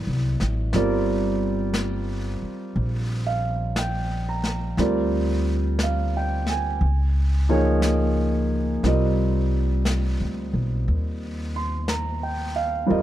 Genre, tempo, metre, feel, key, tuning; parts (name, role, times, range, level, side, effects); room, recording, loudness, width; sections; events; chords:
jazz ballad; 59 BPM; 4/4; swing 66% on 8ths; A4 = 435 Hz
warm concert grand piano; accompaniment; 0.0-13.0 s; F3 to C6; -25 LUFS; right 1 dB
upright bass; bass; 0.0-13.0 s; G1 to F2; -24 LUFS; equal
jazz brush drum kit; drums; 0.4-13.0 s; brushed snare drum, hi-hat, snare drum; -33 LUFS; left 1 dB
little or no reverb; dark, warm production; -21 LUFS; side -13 dB against mid
0.0-13.0 A section
0.0 D7; 0.7 Gm7; 4.8 Bb13/D; 6.8 Db69; 8.8 Cm11